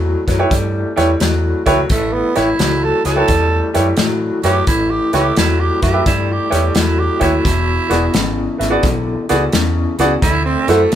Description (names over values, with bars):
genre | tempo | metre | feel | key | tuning
electric blues shuffle | 86 BPM | 4/4 | swing 66% on 8ths | A mixolydian | A4 = 441 Hz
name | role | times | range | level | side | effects
electric guitar through a small old amp | riff | 0.0-10.9 s | E2 to B3 | -20 LUFS | left 2 dB | tremolo
vintage muted fingered electric bass | bass | 0.0-10.9 s | E1 to A2 | -19 LUFS | equal | none
bright upright piano | accompaniment | 0.3-10.8 s | E4 to E5 | -17 LUFS | right 2 dB | none
natural country drum kit | drums | 0.3-10.9 s | hi-hat, kick drum, snare drum | -19 LUFS | left 1 dB | none
growling tenor saxophone | second line | 1.9-10.9 s | A3 to A4 | -19 LUFS | right 4 dB | none
room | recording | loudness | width
light reverb | band playing live in one room | -13 LUFS | side -10 dB against mid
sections
0.0-10.9 A section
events
tenor saxophone solo 0.0-10.9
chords
0.0 A7; 7.5 E7; 10.2 D7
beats
0.51 1.21 | 1.90 2.60 3.29 3.98 | 4.68 5.37 6.07 6.76 | 7.46 8.15 8.84 9.54 | 10.23 10.92